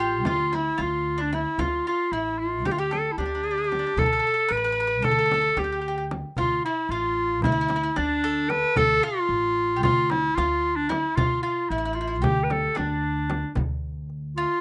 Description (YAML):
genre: Turkish makam ensemble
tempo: 225 BPM (eighths)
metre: 9/8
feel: straight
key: D makam huseyni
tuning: A4 = 440 Hz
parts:
  - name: bright clarinet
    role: melody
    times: 0.0-14.6 s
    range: D4 to B4-27c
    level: -26 LUFS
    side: equal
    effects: none
  - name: mandolin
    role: second line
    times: 0.0-14.6 s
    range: D4 to B4-30c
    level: -35 LUFS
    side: equal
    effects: none
  - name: upright bass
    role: bass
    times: 0.0-14.4 s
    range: A1 to D2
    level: -34 LUFS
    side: equal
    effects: none
  - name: frame drum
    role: percussion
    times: 0.3-13.7 s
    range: none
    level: -35 LUFS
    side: equal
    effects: none
  - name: darbuka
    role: percussion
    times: 4.0-14.4 s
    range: none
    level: -31 LUFS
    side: equal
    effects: none
room: moderate studio reverb, RT60 0.6 s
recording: rough home demo mix, nothing above 10.6 kHz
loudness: -24 LUFS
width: mono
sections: 0.0-4.0 A section; 4.0-13.6 A section; 13.6-14.6 B section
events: none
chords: none